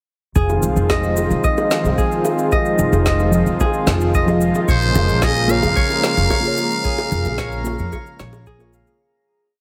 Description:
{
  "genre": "sunset chillout",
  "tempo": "111 BPM",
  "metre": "4/4",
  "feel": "straight",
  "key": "Bb minor",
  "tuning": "A4 = 440 Hz",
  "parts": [
    { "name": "lush unison pad", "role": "sustained chords", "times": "0.4-9.0 s", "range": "Db3 to F4", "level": "-24 LUFS", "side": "equal", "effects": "chorus" },
    { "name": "Celtic harp", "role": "arpeggios", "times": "0.4-9.6 s", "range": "Ab4 to F5", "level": "-26 LUFS", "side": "equal", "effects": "tape echo" },
    { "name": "upright bass", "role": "bass", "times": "0.4-8.8 s", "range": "F1 to F2", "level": "-22 LUFS", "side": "equal", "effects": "tube saturation" },
    { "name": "electronic kick drum", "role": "drums", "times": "0.4-8.6 s", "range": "none", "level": "-23 LUFS", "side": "equal", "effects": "studio reverb" },
    { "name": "electronic shaker and snare drum", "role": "drums", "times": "0.4-9.0 s", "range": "none", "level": "-28 LUFS", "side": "equal", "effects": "studio reverb" },
    { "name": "bongos", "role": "percussion", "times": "0.5-8.7 s", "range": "none", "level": "-29 LUFS", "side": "equal", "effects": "none" },
    { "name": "mellow FM electric piano", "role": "accompaniment", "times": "3.3-9.0 s", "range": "F3 to Eb5", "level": "-25 LUFS", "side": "equal", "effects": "chorus" },
    { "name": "trumpet with metal mute", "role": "melody", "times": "4.7-8.5 s", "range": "C5 to F5", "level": "-23 LUFS", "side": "equal", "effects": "delay" },
    { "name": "drifting glass-harmonics texture", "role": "texture", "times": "5.6-9.0 s", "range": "Bb5", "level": "-35 LUFS", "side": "equal", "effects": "chorus, built-in reverb" }
  ],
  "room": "light reverb, small room ambience",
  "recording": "heavily compressed radio sound",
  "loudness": "-17 LUFS",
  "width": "mono",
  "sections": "0.4-9.0 groove",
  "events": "fade-out 6.1-9.0",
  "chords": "0.4 Fm7; 4.7 Bbm7",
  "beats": "| 0.36 0.90 1.44 1.98 | 2.52 3.06 3.60 4.14 | 4.68 5.22 5.77 6.31 | 6.85 7.39 7.93 8.47"
}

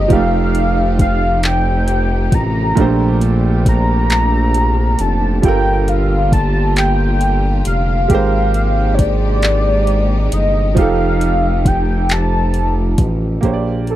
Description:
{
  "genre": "slow six-eight R&B",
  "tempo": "45 BPM (dotted quarters)",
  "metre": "6/8",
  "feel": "straight",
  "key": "Bb major",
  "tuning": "A4 = 439 Hz",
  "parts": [
    { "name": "warm velvety synth lead", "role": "melody", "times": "0.0-14.0 s", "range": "A4 to Bb5", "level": "-19 LUFS", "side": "equal", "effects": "chorus, slapback echo" },
    { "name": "clear grand piano", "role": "accompaniment", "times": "0.0-14.0 s", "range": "Bb2 to D5", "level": "-20 LUFS", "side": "right 6 dB", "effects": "none" },
    { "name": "warm studio string section", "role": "sustained chords", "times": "0.0-13.4 s", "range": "Bb2 to G4", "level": "-24 LUFS", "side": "left 3 dB", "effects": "none" },
    { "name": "smooth synth bass", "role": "bass", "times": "0.0-14.0 s", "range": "F1 to Bb1", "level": "-16 LUFS", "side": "equal", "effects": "none" },
    { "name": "smooth R&B drum kit", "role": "drums", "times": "0.1-14.0 s", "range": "handclaps, hi-hat, kick drum", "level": "-16 LUFS", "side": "equal", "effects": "none" }
  ],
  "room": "little or no reverb",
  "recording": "dry, close 1970s-style studio recording",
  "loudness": "-12 LUFS",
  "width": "side -13 dB against mid",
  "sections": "0.0-13.4 A section",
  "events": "none",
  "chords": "0.1 F9; 2.8 Bbmaj13; 5.4 Gm9; 8.1 Abmaj9; 10.8 F9; 13.4 Bb69",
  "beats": "| 0.10 1.43 | 2.77 4.10 | 5.43 6.76 | 8.10 9.43 | 10.77 12.10 | 13.43"
}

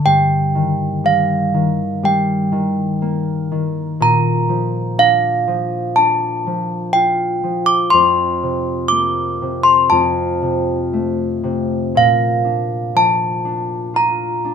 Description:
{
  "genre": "children's music, lullaby",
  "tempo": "61 BPM",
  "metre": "4/4",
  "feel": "straight",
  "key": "Bb major",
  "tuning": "A4 = 441 Hz",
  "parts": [
    { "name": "desk bells", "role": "melody", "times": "0.0-14.5 s", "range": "F5 to D6", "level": "-16 LUFS", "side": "right 1 dB", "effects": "none" },
    { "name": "concert harp", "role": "accompaniment", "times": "0.0-14.5 s", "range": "F2 to F4", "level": "-19 LUFS", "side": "left 1 dB", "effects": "none" }
  ],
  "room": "light reverb",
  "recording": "minimal, uncompressed stereo recording",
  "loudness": "-14 LUFS",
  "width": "side -7 dB against mid",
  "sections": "0.0-12.0 A section; 12.0-14.5 B section",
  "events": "none",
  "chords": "0.1 Eb/G; 4.0 Bb; 7.9 Fsus4; 9.9 F; 12.0 Bb",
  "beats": "| 0.06 1.05 2.04 3.03 | 4.01 4.99 5.97 6.96 | 7.94 8.93 9.92 10.94 | 11.95 12.95 13.95"
}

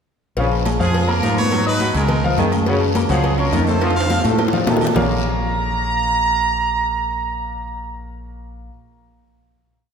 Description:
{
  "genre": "latin, salsa",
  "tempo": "210 BPM",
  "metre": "4/4",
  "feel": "straight",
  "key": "Bb minor",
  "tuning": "A4 = 443 Hz",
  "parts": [
    { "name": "bright trombone section", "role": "second line", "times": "0.4-5.1 s", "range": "Bb2 to A3", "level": "-24 LUFS", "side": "equal", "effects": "none" },
    { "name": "clear grand piano", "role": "accompaniment", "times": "0.4-8.7 s", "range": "F3 to Gb6", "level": "-24 LUFS", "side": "left 2 dB", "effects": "none" },
    { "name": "mellow fretless electric bass", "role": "bass", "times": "0.4-8.7 s", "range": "Bb1 to Bb2", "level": "-22 LUFS", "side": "equal", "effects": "none" },
    { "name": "congas", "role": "percussion", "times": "0.4-5.0 s", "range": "none", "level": "-25 LUFS", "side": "left 1 dB", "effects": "none" },
    { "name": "cowbell and bongos", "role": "percussion", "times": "0.4-5.0 s", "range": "none", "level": "-28 LUFS", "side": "left 3 dB", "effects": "none" },
    { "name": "guiro", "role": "percussion", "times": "0.4-5.0 s", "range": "none", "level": "-35 LUFS", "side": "left 7 dB", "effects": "none" },
    { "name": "agogo bells and timbales", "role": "percussion", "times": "0.5-5.0 s", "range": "none", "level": "-27 LUFS", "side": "right 6 dB", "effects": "none" },
    { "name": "bright trumpet section", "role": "melody", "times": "0.8-8.0 s", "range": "Db4 to Bb5", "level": "-22 LUFS", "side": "right 3 dB", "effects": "none" }
  ],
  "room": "wet concert hall reverb, RT60 2.2 s",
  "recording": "recorded in a church or concert hall",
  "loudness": "-16 LUFS",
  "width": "side -6 dB against mid",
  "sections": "0.4-5.0 mambo (horn riffs); 5.0-7.2 final chord",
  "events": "drum fill 3.8-5.0",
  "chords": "0.4 Bbm7; 1.5 Abm7; 2.1 Db69; 2.7 Gbmaj9; 3.8 F7; 5.0 Bbm7",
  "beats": "| 0.37 0.66 0.94 1.23 | 1.52 1.81 2.09 2.38 | 2.67 2.96 3.24 3.53 | 3.81 4.10 4.39 4.67 | 4.96 5.24 5.53 5.81 | 6.09 6.38 6.66 6.95"
}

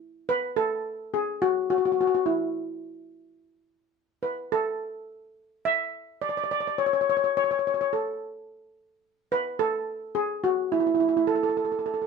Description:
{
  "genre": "calypso",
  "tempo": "106 BPM",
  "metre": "4/4",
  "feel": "straight",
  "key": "A major",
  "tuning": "A4 = 440 Hz",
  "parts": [
    { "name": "steel pan", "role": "solo", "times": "0.3-12.1 s", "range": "E4 to E5", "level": "-24 LUFS", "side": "left 1 dB", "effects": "none" }
  ],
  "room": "light reverb",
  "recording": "none",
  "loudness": "-24 LUFS",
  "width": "side -5 dB against mid",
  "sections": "0.0-12.1 A section",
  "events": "none",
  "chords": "none",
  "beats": "| 0.28 0.84 1.41 1.97 | 2.54 3.11 3.67 4.24 | 4.80 5.37 5.93 6.50 | 7.06 7.63 8.19 8.75 | 9.32 9.88 10.45 11.01 | 11.57"
}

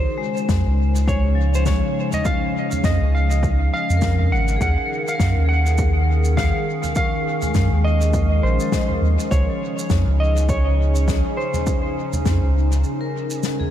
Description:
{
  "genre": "ambient dub",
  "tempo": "102 BPM",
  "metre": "4/4",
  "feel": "swing 59% on 16ths",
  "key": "unclear",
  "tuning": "A4 = 440 Hz",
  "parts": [
    { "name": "clean lap steel guitar", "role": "melody", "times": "0.0-13.4 s", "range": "C5 to Gb5", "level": "-25 LUFS", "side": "equal", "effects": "dub echo" },
    { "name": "warbly tape-like pad", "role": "sustained chords", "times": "0.0-13.7 s", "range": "Db3 to Bb4", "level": "-27 LUFS", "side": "equal", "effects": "chorus, built-in reverb, vintage 12-bit sampler grit" },
    { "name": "soft dub sub bass", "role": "bass", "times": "0.0-12.8 s", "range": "Ab1 to Gb2", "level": "-18 LUFS", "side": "equal", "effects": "none" },
    { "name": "vibraphone with hard mallets", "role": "arpeggios", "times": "0.2-13.7 s", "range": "F3 to Eb6", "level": "-28 LUFS", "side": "left 6 dB", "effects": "tape echo" },
    { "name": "soft-mallet drum kit", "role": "drums", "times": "0.4-13.7 s", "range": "shaker, snare drum, toms", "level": "-29 LUFS", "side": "left 2 dB", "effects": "dub echo" },
    { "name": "electronic kick drum", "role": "drums", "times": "0.5-12.4 s", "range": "none", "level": "-24 LUFS", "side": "equal", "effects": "none" }
  ],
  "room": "light reverb, small room ambience",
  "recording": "none",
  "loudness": "-17 LUFS",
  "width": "side -11 dB against mid",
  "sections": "0.0-13.7 A section",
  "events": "break 12.8-13.7",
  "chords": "0.0 Dbmaj7; 4.6 Ebm11; 9.3 Dbmaj7",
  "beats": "0.49 1.08 1.67 | 2.25 2.84 3.43 4.02 | 4.61 5.20 5.78 6.37 | 6.96 7.55 8.14 8.72 | 9.31 9.90 10.49 11.08 | 11.67 12.26 12.84 13.43"
}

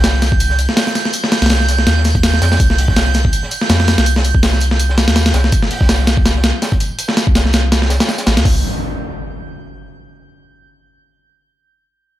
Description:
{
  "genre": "drum and bass, jungle",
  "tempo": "164 BPM",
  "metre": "4/4",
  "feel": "swing 55% on 16ths",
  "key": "C minor",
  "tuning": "A4 = 440 Hz",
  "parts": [
    { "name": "soft dub sub bass", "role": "bass", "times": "0.0-8.6 s", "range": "A1 to F2", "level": "-14 LUFS", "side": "equal", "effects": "none" },
    { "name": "breakbeat sampler-style drum kit", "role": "drums", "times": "0.0-8.5 s", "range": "hi-hat, kick drum, snare drum", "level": "-14 LUFS", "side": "equal", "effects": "overdrive" },
    { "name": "crunchy breakbeat drum kit", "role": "drums", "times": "0.0-8.4 s", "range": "hi-hat, snare drum, tambourine", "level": "-26 LUFS", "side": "right 1 dB", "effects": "high-pass filter on hats, high-pass filter on snare, high-pass filter on perc, high-pass filter on room" },
    { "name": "drifting glass-harmonics texture", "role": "texture", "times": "0.0-8.5 s", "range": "G6", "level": "-24 LUFS", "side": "right 8 dB", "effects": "chorus, built-in reverb" },
    { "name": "impact", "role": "sound effects", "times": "8.5-9.9 s", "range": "none", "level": "-25 LUFS", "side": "equal", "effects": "none" }
  ],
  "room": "little or no reverb",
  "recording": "none",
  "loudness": "-11 LUFS",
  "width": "side -14 dB against mid",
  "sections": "0.0-8.5 A section; 8.5-9.9 B section",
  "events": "none",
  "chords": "0.0 C5; 8.5 N.C.",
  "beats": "0.04 0.40 0.77 | 1.14 1.50 1.87 2.23 | 2.60 2.96 3.33 3.70 | 4.06 4.43 4.79 5.16 | 5.53 5.89 6.26 6.62 | 6.99 7.35 7.72 8.09 | 8.45 8.82 9.18 9.55"
}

